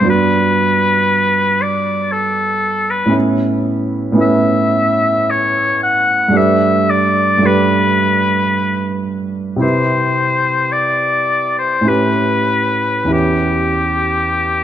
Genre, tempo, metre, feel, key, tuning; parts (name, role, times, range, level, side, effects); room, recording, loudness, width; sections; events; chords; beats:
classical, impressionist duo for oboe and grand piano; 47-59 BPM; 3/4; rubato; A4 = 436 Hz
clear oboe; melody; 0.0-14.6 s; G4 to F#5; -15 LUFS; left 2 dB
clear concert grand piano; accompaniment; 0.0-14.6 s; E2 to B4; -16 LUFS; right 2 dB
moderate scoring stage reverb, RT60 1.9 s; close, detailed microphones; -12 LUFS; side -10 dB against mid
0.0-14.6 A section
0.1 Gmaj7; 3.1 Aadd9; 6.4 Gadd9; 9.6 Cmaj7; 11.9 A9; 13.1 Em6
| 0.08 1.10 2.12 | 3.15 4.21 5.29 | 6.36 7.45 8.55 | 9.63 10.71 11.88 | 13.12 14.38